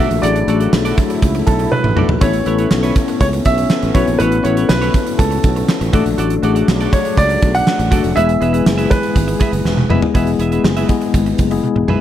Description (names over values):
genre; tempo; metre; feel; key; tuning
1980s-style pop; 121 BPM; 4/4; straight; A major; A4 = 440 Hz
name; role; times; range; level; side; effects
clear baby grand piano; melody; 0.0-9.9 s; A4 to F#5; -20 LUFS; right 2 dB; slapback echo
tine electric piano; accompaniment; 0.0-12.0 s; G#3 to B4; -19 LUFS; left 8 dB; medium tremolo
clear brass ensemble; sustained chords; 0.0-12.0 s; E3 to G#4; -24 LUFS; right 3 dB; none
clean electric guitar; riff; 0.0-12.0 s; E4 to E5; -24 LUFS; right 6 dB; analog chorus, slapback echo
sustaining fretless electric bass; bass; 0.0-12.0 s; E1 to C#2; -18 LUFS; right 1 dB; none
gated 80s drum kit; drums; 0.1-12.0 s; hi-hat, kick drum, snare drum, tambourine, toms; -17 LUFS; right 1 dB; none
room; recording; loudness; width
little or no reverb; none; -12 LUFS; side -11 dB against mid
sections
0.0-10.1 A section; 10.1-12.0 B section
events
drum fill 1.7-2.2, 9.7-10.1, 11.6-12.0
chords
0.0 D/A; 2.2 Aadd9; 5.9 D/A; 8.2 E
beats
| 0.23 0.73 1.22 1.72 | 2.21 2.71 3.21 3.70 | 4.20 4.69 5.19 5.69 | 6.18 6.68 7.17 7.67 | 8.16 8.66 9.16 9.65 | 10.15 10.64 11.14 11.64